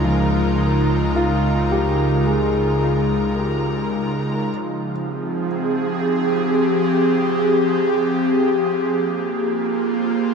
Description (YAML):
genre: ambient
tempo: 54 BPM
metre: 4/4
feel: straight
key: F minor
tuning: A4 = 440 Hz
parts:
  - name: airy breathy pad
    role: sustained chords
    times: 0.0-10.3 s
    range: Db3 to C5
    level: -18 LUFS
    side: equal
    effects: chorus
  - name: felt-muted upright piano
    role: arpeggios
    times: 0.0-5.5 s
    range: F3 to G4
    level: -25 LUFS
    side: left 1 dB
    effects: ping-pong delay
  - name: deep rumbling drone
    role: bass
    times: 0.0-4.4 s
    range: Db2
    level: -26 LUFS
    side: equal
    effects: built-in reverb, tube saturation
  - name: clear studio violin section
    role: texture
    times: 0.0-4.5 s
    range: Bb4 to Bb5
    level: -31 LUFS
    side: right 1 dB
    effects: none
room: wet cathedral reverb, RT60 5.8 s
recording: dark, warm production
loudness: -17 LUFS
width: side -5 dB against mid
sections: 0.0-4.5 A section; 4.5-10.3 B section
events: none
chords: 0.0 Db6; 4.5 Fm7; 8.9 Bb7(no3)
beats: | 0.04 1.15 2.26 3.38 | 4.49 5.60 6.71 7.82 | 8.93 10.04